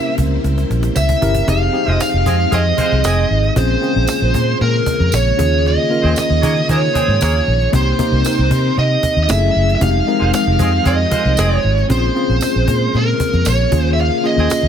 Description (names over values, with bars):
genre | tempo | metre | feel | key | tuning
polished 1980s jazz-funk pop | 115 BPM | 4/4 | straight | F minor | A4 = 440 Hz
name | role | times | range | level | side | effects
smooth overdriven lead guitar | melody | 0.0-14.7 s | Bb4 to F5 | -18 LUFS | right 2 dB | none
tine electric piano | accompaniment | 0.0-14.7 s | Ab3 to Bb4 | -21 LUFS | left 3 dB | medium stereo tremolo, lush chorus
string machine, full ensemble | sustained chords | 0.0-14.7 s | C3 to G5 | -24 LUFS | equal | ensemble chorus
vintage muted fingered electric bass | bass | 0.2-14.7 s | F1 to Eb3 | -16 LUFS | equal | none
cajon | drums | 0.2-14.7 s | none | -22 LUFS | equal | none
tambourine | percussion | 1.0-14.6 s | none | -29 LUFS | right 10 dB | none
mellow horn section | second line | 1.9-14.5 s | Ab3 to F5 | -25 LUFS | right 2 dB | ping-pong delay
room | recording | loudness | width
little or no reverb | none | -13 LUFS | side -8 dB against mid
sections
0.0-1.5 A section; 1.5-14.7 B section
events
drum fill 0.4-1.5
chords
0.0 C7b9; 1.5 Fm7; 3.6 Bbm7; 5.4 Eb7sus4; 7.7 Cm7; 9.3 Gbm7; 9.8 Fm7; 11.9 Bbm7; 13.7 Eb7sus4